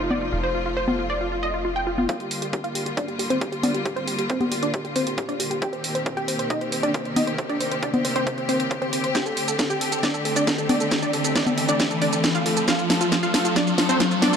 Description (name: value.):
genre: uplifting trance.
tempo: 136 BPM.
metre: 4/4.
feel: straight.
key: G minor.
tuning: A4 = 440 Hz.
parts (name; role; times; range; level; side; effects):
wide unison pluck; melody; 0.0-14.4 s; C4 to G5; -25 LUFS; equal; sidechain pumping, tape echo.
felt-muted upright piano; second line; 0.0-0.5 s; Eb4; -37 LUFS; equal; ping-pong delay.
clear studio string section; sustained chords; 0.0-14.4 s; C3 to A4; -28 LUFS; left 1 dB; sidechain pumping.
tight sequencer bass; bass; 0.0-2.1 s; F1; -32 LUFS; equal; tube saturation, sidechain pumping.
techno drum kit; drums; 0.1-14.4 s; congas, hi-hat, shaker, snare drum; -24 LUFS; equal; overdrive, small room reverb.
electronic kick drum; drums; 2.1-14.1 s; none; -32 LUFS; equal; overdrive, high-pass filter on kick, small room reverb.
riser; sound effects; 3.1-14.4 s; none; -29 LUFS; left 2 dB; none.
room: light reverb.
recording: dark, warm production, low-pass filter.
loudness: -21 LUFS.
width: side -7 dB against mid.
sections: 0.0-2.1 A section; 2.1-14.4 B section.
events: build-up 2.1-14.4; filter sweep on synth pluck 2.1-14.4; riser 3.1-14.4; drum fill 9.2-14.4.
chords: 0.0 F; 2.1 Gm7; 5.6 Cm7; 9.2 D7sus4; 12.7 F.